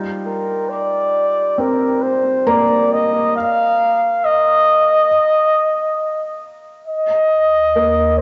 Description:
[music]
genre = ambient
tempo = 68 BPM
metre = 4/4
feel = straight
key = Eb major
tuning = A4 = 440 Hz
[part]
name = felt-muted upright piano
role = arpeggios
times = 0.0-8.2 s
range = G3 to Bb5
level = -23 LUFS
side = equal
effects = analog delay
[part]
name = mellow flugelhorn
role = melody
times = 0.3-8.2 s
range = Bb4 to F5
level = -17 LUFS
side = equal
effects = analog delay
[part]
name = deep rumbling drone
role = bass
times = 7.6-8.2 s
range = Eb2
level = -27 LUFS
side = equal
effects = built-in reverb, transformer saturation
[sound]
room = wet spring reverb, RT60 2.3 s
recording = home recording on cassette, nothing above 7.8 kHz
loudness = -16 LUFS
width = mono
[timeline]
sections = 0.0-6.9 A section; 6.9-8.2 B section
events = none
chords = 0.0 Eb6 (rootless); 3.4 N.C.; 6.9 Eb5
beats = 0.70 1.58 2.47 | 3.35 4.23 5.11 6.00 | 6.88 7.76

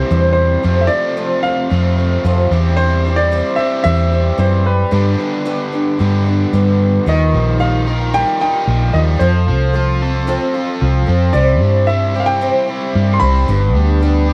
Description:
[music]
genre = folk rock and heartland rock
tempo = 112 BPM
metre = 4/4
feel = straight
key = C major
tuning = A4 = 444 Hz
[part]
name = clear baby grand piano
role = melody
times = 0.0-14.3 s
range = B4 to C6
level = -22 LUFS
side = equal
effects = analog delay
[part]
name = picked twelve-string acoustic guitar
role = accompaniment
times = 0.0-14.3 s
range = C3 to C5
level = -23 LUFS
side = equal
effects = none
[part]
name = raw garage guitar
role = riff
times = 0.0-14.3 s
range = F2 to Bb4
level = -24 LUFS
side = equal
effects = overdrive
[part]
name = hollow-body short-scale fingered electric bass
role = bass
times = 0.0-14.3 s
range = G1 to G2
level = -16 LUFS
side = equal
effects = none
[part]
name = pedal harmonium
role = sustained chords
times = 7.1-14.3 s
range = B3 to G4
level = -29 LUFS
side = equal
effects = none
[sound]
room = light reverb, studio reverb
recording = dark, warm production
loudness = -15 LUFS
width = mono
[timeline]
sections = 0.0-7.1 A section; 7.1-14.3 B section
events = none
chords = 0.0 C; 0.7 F; 2.5 C/E; 4.9 G; 7.1 Ebadd9; 9.2 F; 11.3 C; 13.5 G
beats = 0.12 | 0.65 1.19 1.72 2.25 | 2.79 3.33 3.86 4.39 | 4.93 5.46 6.00 6.54 | 7.07 7.61 8.14 8.68 | 9.21 9.74 10.28 10.81 | 11.35 11.88 12.42 12.95 | 13.48 14.02

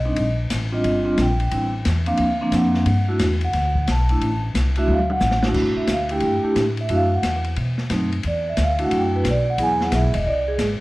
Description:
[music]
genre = jazz, small-group swing and bop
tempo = 178 BPM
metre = 4/4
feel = swing 65% on 8ths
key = G major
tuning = A4 = 440 Hz
[part]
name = vibraphone with medium mallets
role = accompaniment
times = 0.0-10.6 s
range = F3 to A5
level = -21 LUFS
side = right 1 dB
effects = none
[part]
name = upright bass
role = bass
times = 0.0-10.8 s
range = E1 to B2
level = -22 LUFS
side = equal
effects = none
[part]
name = open jazz drum kit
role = drums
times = 0.2-10.7 s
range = crash cymbal, hi-hat, kick drum, ride cymbal, snare drum, toms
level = -27 LUFS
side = left 2 dB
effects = none
[sound]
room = light reverb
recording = worn, warbling old tape, cassette tape, warbly pitch drift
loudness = -18 LUFS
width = side -20 dB against mid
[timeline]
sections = 0.0-5.6 A section; 5.6-10.8 A section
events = drum fill 4.9-5.6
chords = 0.2 Ebmaj9#11; 1.5 Am7; 2.2 D7alt; 2.9 Gmaj7; 4.2 Am; 4.9 D; 5.6 Gsus2; 6.9 E9sus4; 7.6 B7b9; 8.2 Esus2; 9.6 E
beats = | 0.17 0.50 0.84 1.18 | 1.51 1.85 2.19 2.52 | 2.86 3.20 3.53 3.87 | 4.21 4.54 4.88 5.21 | 5.55 5.89 6.22 6.56 | 6.90 7.23 7.57 7.91 | 8.24 8.58 8.91 9.25 | 9.59 9.92 10.26 10.60

